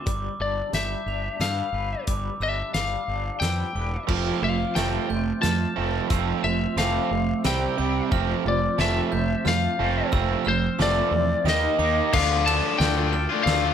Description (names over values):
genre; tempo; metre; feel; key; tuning
post-rock; 89 BPM; 3/4; straight; unclear; A4 = 441 Hz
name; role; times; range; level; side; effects
lightly driven lead guitar; melody; 0.0-13.7 s; C5 to A5; -26 LUFS; left 5 dB; slapback echo
glockenspiel with brass mallets; arpeggios; 0.0-13.7 s; D6 to F7; -34 LUFS; right 3 dB; slapback echo
twangy electric guitar; arpeggios; 0.0-13.7 s; C3 to B4; -33 LUFS; left 2 dB; tremolo, slapback echo
fuzz fingered electric bass; bass; 0.1-13.7 s; E1 to G2; -28 LUFS; equal; overdrive
loose indie drum kit; drums; 0.1-13.6 s; crash cymbal, hi-hat, kick drum, ride cymbal, snare drum; -28 LUFS; equal; none
overdriven semi-hollow guitar; riff; 4.1-12.1 s; C3 to Eb4; -25 LUFS; right 8 dB; none
cranked stack guitar; riff; 12.1-13.7 s; D3 to F4; -24 LUFS; left 6 dB; overdrive
room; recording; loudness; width
moderate studio reverb, RT60 0.6 s; none; -21 LUFS; side -8 dB against mid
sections
0.0-12.1 A section; 12.1-13.7 B section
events
build-up 0.0-12.1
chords
0.1 G; 4.1 F; 7.4 C5; 8.1 F; 11.5 Eb5; 12.1 Dm